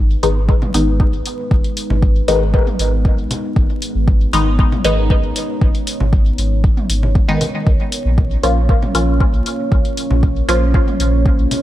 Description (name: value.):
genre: dub techno.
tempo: 117 BPM.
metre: 4/4.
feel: straight.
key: G# dorian.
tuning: A4 = 439 Hz.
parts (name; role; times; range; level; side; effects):
deep dark ambient pad; sustained chords; 0.0-11.6 s; G#3 to C#5; -24 LUFS; right 1 dB; chorus, built-in reverb, sidechain pumping.
pure sine sub bass; bass; 0.0-11.5 s; G#1 to A#1; -17 LUFS; equal; sidechain pumping.
filtered dub chord stab; stabs; 0.2-10.6 s; D#3 to E#4; -20 LUFS; left 2 dB; phaser, cassette tape, sidechain pumping, dub echo.
electronic hi-hat; drums; 0.2-11.6 s; none; -25 LUFS; left 2 dB; overdrive.
electronic kick drum; drums; 0.5-11.4 s; none; -15 LUFS; equal; overdrive.
electronic toms and congas; percussion; 0.6-11.6 s; none; -26 LUFS; equal; sidechain pumping on toms, sidechain pumping on perc, dub echo.
room: little or no reverb.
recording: echo-heavy mix, vinyl crackle.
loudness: -13 LUFS.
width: side -14 dB against mid.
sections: 0.0-11.6 A section.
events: none.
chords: 0.0 G#m; 7.7 A#m.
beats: 0.49 1.00 | 1.51 2.02 2.54 3.05 | 3.56 4.08 4.59 5.10 | 5.61 6.13 6.64 7.15 | 7.67 8.18 8.69 9.20 | 9.72 10.23 10.74 11.26.